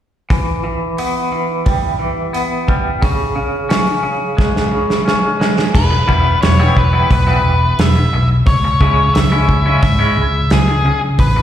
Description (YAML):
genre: quiet-loud alternative rock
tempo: 88 BPM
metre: 4/4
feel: straight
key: unclear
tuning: A4 = 443 Hz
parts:
  - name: twangy electric guitar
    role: arpeggios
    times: 0.3-11.4 s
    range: C#3 to E4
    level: -18 LUFS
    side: equal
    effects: tremolo, slapback echo
  - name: loose indie drum kit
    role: drums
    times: 0.3-11.3 s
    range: crash cymbal, hi-hat, kick drum, snare drum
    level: -16 LUFS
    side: right 1 dB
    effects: slapback echo
  - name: octave-fuzz lead guitar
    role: melody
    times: 5.7-11.4 s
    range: G#4 to E5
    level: -18 LUFS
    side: left 2 dB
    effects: distortion, slapback echo, analog delay
  - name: picked electric bass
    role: bass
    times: 5.7-11.4 s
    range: E1 to C#3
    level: -14 LUFS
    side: equal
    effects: none
room: light reverb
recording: live gig heard through the venue's PA, recital hall reverb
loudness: -12 LUFS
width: side -10 dB against mid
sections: 0.3-5.7 A section; 5.7-11.4 B section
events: drum fill 4.4-5.7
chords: 0.3 Em; 3.0 C#5; 5.7 Em; 8.5 C#m